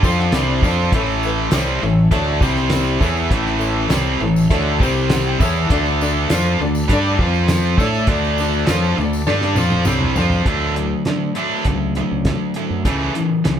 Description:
classic rock; 101 BPM; 4/4; straight; A4 = 440 Hz
tack piano; accompaniment; 0.0-10.4 s; C4 to A5; -26 LUFS; left 4 dB
cranked stack guitar; riff; 0.0-13.6 s; A2 to A4; -22 LUFS; left 7 dB; overdrive
tight distorted guitar; riff; 0.0-13.6 s; A2 to A4; -20 LUFS; right 6 dB; distortion
growling fingered electric bass; bass; 0.0-13.6 s; A1 to D3; -21 LUFS; equal; overdrive
cloth-damped thuddy drum kit; drums; 0.0-13.6 s; hi-hat, kick drum, snare drum, toms; -20 LUFS; equal
tambourine; percussion; 0.0-10.4 s; -36 LUFS; left 4 dB
moderate large studio reverb, RT60 0.9 s; band playing live in one room; -15 LUFS; side -9 dB against mid
0.0-10.5 A section; 10.5-13.6 B section
honky-tonk piano fill 0.0-0.9, 4.8-5.7; drum fill 9.3-10.5
0.0 D5; 0.9 A; 2.4 C5; 3.0 A; 4.8 C5; 5.4 A; 5.7 D5; 7.2 F5; 7.8 D5; 10.5 D; 12.9 A/C#
0.34 | 0.93 1.53 2.12 2.72 | 3.31 3.91 4.51 5.10 | 5.70 6.29 6.89 7.48 | 8.08 8.67 9.27 9.87 | 10.46 11.06 11.66 12.25 | 12.85 13.45

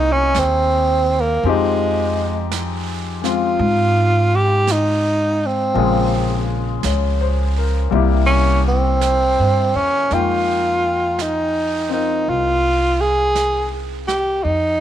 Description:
jazz ballad; 55 BPM; 4/4; swing 66% on 8ths; F minor from 10.1 s; A4 = 440 Hz
breathy tenor saxophone; melody; 0.0-14.8 s; Ab3 to Ab4; -17 LUFS; right 1 dB
clear grand piano; accompaniment; 0.0-14.5 s; C3 to G5; -24 LUFS; left 12 dB
upright bass; bass; 0.0-14.8 s; Bb1 to Ab2; -20 LUFS; right 1 dB
jazz brush drum kit; drums; 0.3-14.8 s; brushed snare drum, hi-hat, snare drum; -32 LUFS; right 10 dB
light reverb, studio reverb; 1960s-style stereo with parts hard left and right; -15 LUFS; side -11 dB against mid
0.0-10.1 A section; 10.1-14.8 B section
tenor saxophone solo 0.0-10.1
0.0 C7alt; 1.4 Fm7; 5.8 Bbm7; 7.9 C7; 10.1 Fm11
0.36 | 1.44 2.52 3.60 4.68 | 5.77 6.85 7.94 9.03 | 10.12 11.20 12.29 13.37 | 14.46

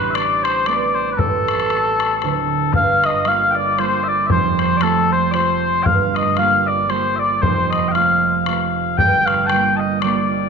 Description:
celtic folk, Celtic waltz; 115 BPM; 3/4; swing 57% on 8ths; G minor; A4 = 439 Hz
mellow oboe; melody; 0.0-10.3 s; A4 to G5; -18 LUFS; equal
mellow small bagpipes; second line; 0.0-10.5 s; A4 to A5; -22 LUFS; left 12 dB
concert harp; accompaniment; 0.0-10.5 s; D1 to F4; -21 LUFS; right 10 dB
bodhran; percussion; 0.2-10.2 s; -24 LUFS; left 5 dB
moderate plate reverb, RT60 2.7 s; 1960s-style stereo with parts hard left and right; -15 LUFS; side -6 dB against mid
0.0-2.7 A section; 2.7-10.5 B section
0.0 Amadd9; 1.2 N.C.; 2.7 Gm7; 4.3 F; 5.9 Gm7; 7.4 F; 9.0 Gm7
0.16 0.68 | 1.19 1.71 2.23 | 2.75 3.27 3.79 | 4.30 4.82 5.34 | 5.87 6.39 6.91 | 7.43 7.95 8.47 | 8.99 9.52 10.04

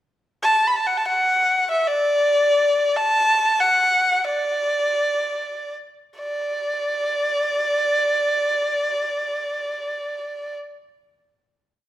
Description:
chinese traditional, Chinese chamber ensemble; free time; D gong mode; A4 = 440 Hz
clear erhu; solo; 0.4-10.6 s; D5 to B5; -19 LUFS; equal
wet recital hall reverb, RT60 1.3 s; -18 LUFS; side -13 dB against mid
0.0-0.7 pickup bar; 0.7-6.2 A section; 6.2-9.8 final note
slowing down 3.3-6.2
free time

